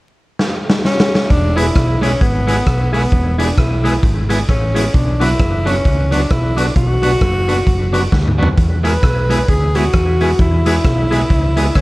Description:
ska; 132 BPM; 4/4; swing 59% on 8ths; E mixolydian; A4 = 440 Hz
raw garage drum kit; drums; 0.4-11.8 s; hi-hat, kick drum, rim click, snare drum, toms; -16 LUFS; equal
warm tenor saxophone; melody; 0.9-11.8 s; B3 to B4; -20 LUFS; equal; tape echo
hollow-body short-scale fingered electric bass; bass; 1.3-11.8 s; E1 to E2; -17 LUFS; equal
electric guitar at the edge of break-up; accompaniment; 1.6-11.7 s; F#3 to G#4; -22 LUFS; right 2 dB; spring reverb
percussive tonewheel organ; stabs; 1.6-11.8 s; D4 to B4; -24 LUFS; left 3 dB; overdrive, chorus vibrato, slow rotary speaker, tape echo
light reverb; dark, warm production, vinyl crackle; -12 LUFS; side -20 dB against mid
0.0-1.3 A section; 1.3-11.8 B section
drum fill 0.4-1.3, 8.1-8.6
0.0 N.C.; 1.3 E; 4.9 Bm; 8.6 E
0.39 0.85 | 1.30 1.76 2.21 2.67 | 3.12 3.58 4.03 4.49 | 4.94 5.40 5.85 6.30 | 6.76 7.21 7.67 8.12 | 8.58 9.03 9.48 9.94 | 10.39 10.85 11.30 11.75

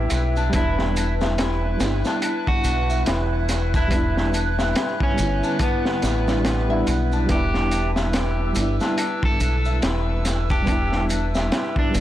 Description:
trip hop; 71 BPM; 4/4; swing 59% on 16ths; E minor; A4 = 440 Hz
electric guitar at the edge of break-up; melody; 0.0-12.0 s; B3 to A4; -28 LUFS; equal; vintage 12-bit sampler grit, tape echo
mellow reed electric piano; accompaniment; 0.0-12.0 s; D3 to E4; -27 LUFS; right 1 dB; tremolo, tape echo
warbly tape-like pad; sustained chords; 0.0-12.0 s; E4 to F#6; -30 LUFS; left 1 dB; chorus, built-in reverb, phaser
nylon-string guitar; arpeggios; 0.0-12.0 s; D4 to E5; -30 LUFS; left 4 dB; digital delay
deep dub fingered electric bass; bass; 0.0-12.0 s; E1 to B1; -23 LUFS; equal; tube saturation
crunchy breakbeat drum kit; drums; 0.1-12.0 s; hi-hat, kick drum, snare drum; -24 LUFS; equal
maracas; percussion; 0.1-12.0 s; -38 LUFS; right 3 dB
little or no reverb; blown-out, overdriven recording, overdrive; -19 LUFS; side -13 dB against mid
0.0-12.0 A section
0.0 Em7
| 0.53 1.38 2.22 3.07 | 3.92 4.76 5.61 6.45 | 7.29 8.14 8.98 9.83 | 10.68 11.52

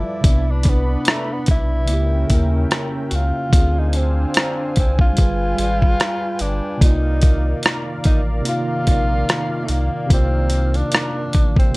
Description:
lo-fi hip hop; 73 BPM; 4/4; swing 56% on 16ths; A4 = 440 Hz
breathy tenor saxophone; melody; 0.0-11.8 s; A3 to F#4; -25 LUFS; equal; low-pass filter
mellow tine electric piano; accompaniment; 0.0-11.8 s; C3 to F5; -25 LUFS; right 1 dB; medium stereo tremolo, low-pass filter
warm analog pad; sustained chords; 0.0-11.8 s; Eb3 to B5; -28 LUFS; equal; chorus, low-pass filter
warm sub bass; bass; 0.0-11.7 s; G1 to Eb2; -19 LUFS; equal
dusty soul sampler-style drum kit; drums; 0.2-11.8 s; hi-hat, kick drum, rim click; -16 LUFS; equal
little or no reverb; dry, gritty hardware recording; -16 LUFS; side -24 dB against mid
0.0-11.8 A section
0.2 Cmaj9; 1.9 C#dim7; 3.5 Dm7b5; 5.2 G7b9; 6.8 Cm11
| 0.24 1.06 1.89 2.71 | 3.53 4.35 5.17 6.00 | 6.82 7.64 8.46 9.28 | 10.11 10.93 11.75

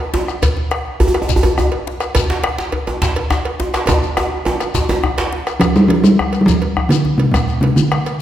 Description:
west african traditional, West African drum ensemble; 139 BPM (dotted quarters); 12/8; straight; A4 = 440 Hz
djembe; percussion; 0.1-8.1 s; -24 LUFS; left 2 dB
djembe; percussion; 0.1-5.3 s; -18 LUFS; right 1 dB
bombo; percussion; 0.3-8.1 s; -21 LUFS; equal
shekere; percussion; 0.3-8.1 s; -28 LUFS; left 4 dB
cowbell; percussion; 0.4-8.2 s; -26 LUFS; right 2 dB
talking drum; melody; 5.6-8.2 s; Bb2 to G3; -12 LUFS; equal
wet scoring stage reverb, RT60 1.8 s; -14 LUFS; side -11 dB against mid
0.0-5.6 A section; 5.6-8.2 B section
drum fill 3.9-5.6
| 0.43 0.86 1.29 1.72 | 2.15 2.59 3.02 3.45 | 3.88 4.32 4.75 5.18 | 5.61 6.04 6.48 6.91 | 7.34 7.77 8.21

